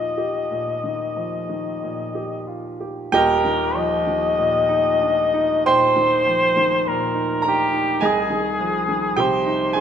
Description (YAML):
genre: classical, romantic duo for cor anglais and grand piano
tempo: 45-52 BPM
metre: 4/4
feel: rubato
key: Eb major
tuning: A4 = 441 Hz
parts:
  - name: mellow cor anglais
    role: melody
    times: 0.0-9.8 s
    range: G4 to Eb5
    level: -20 LUFS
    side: left 2 dB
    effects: none
  - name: bright grand piano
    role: accompaniment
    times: 0.0-9.8 s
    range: Eb1 to C6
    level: -21 LUFS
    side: right 2 dB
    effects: none
room: moderate recital hall reverb, RT60 1.5 s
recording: none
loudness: -18 LUFS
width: side -8 dB against mid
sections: 0.0-3.1 A section; 3.1-9.8 A section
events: none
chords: 0.0 Eb; 8.0 Ab/C